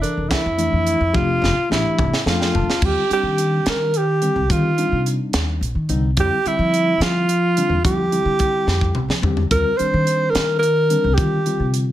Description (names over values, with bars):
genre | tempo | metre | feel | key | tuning
electric jazz fusion | 72 BPM (dotted quarters) | 6/8 | straight | unclear | A4 = 440 Hz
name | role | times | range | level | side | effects
warm alto saxophone | melody | 0.0-11.8 s | D4 to C5 | -19 LUFS | right 1 dB | slapback echo
mellow reed electric piano | accompaniment | 0.0-11.9 s | D3 to A5 | -25 LUFS | left 3 dB | fast tremolo
tight funk drum kit | drums | 0.0-11.9 s | crash cymbal, hi-hat, kick drum, snare drum, toms | -23 LUFS | equal | none
upright bass | bass | 0.2-11.8 s | E1 to F3 | -21 LUFS | equal | none
room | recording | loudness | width
light reverb, studio ambience | none | -16 LUFS | side -13 dB against mid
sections
0.0-2.8 A section; 2.8-11.9 B section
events
drum fill 1.1-2.8, 8.7-9.5; reed electric piano fill 2.0-2.8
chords
0.0 Fmaj13; 2.8 Eb6; 6.2 Fsus2; 9.5 Eb69